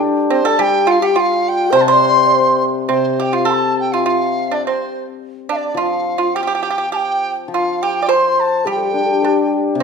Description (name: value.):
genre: chinese traditional, Chinese chamber ensemble.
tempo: 104 BPM.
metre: 2/4.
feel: rubato.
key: C zhi mode.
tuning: A4 = 442 Hz.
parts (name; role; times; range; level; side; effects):
reedy large dizi; melody; 0.0-9.8 s; C5 to C6; -18 LUFS; equal; none.
low xiao; second line; 0.0-2.6, 7.5-9.8 s; C4 to D5; -20 LUFS; left 5 dB; none.
hammered dulcimer; accompaniment; 0.0-9.8 s; C3 to G4; -20 LUFS; left 4 dB; none.
pipa; second line; 0.3-9.8 s; C4 to D5; -19 LUFS; right 6 dB; none.
room: moderate recital hall reverb, RT60 1.6 s.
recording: minimal, uncompressed stereo recording.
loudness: -13 LUFS.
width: side -5 dB against mid.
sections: 0.0-2.9 A section; 2.9-9.8 B section.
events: none.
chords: none.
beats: 0.03 | 0.60 1.17 | 1.74 2.32 | 2.91 3.49 | 4.07 4.65 | 5.22 5.77 | 6.34 6.92 | 7.51 8.09 | 8.67 9.23 | 9.79.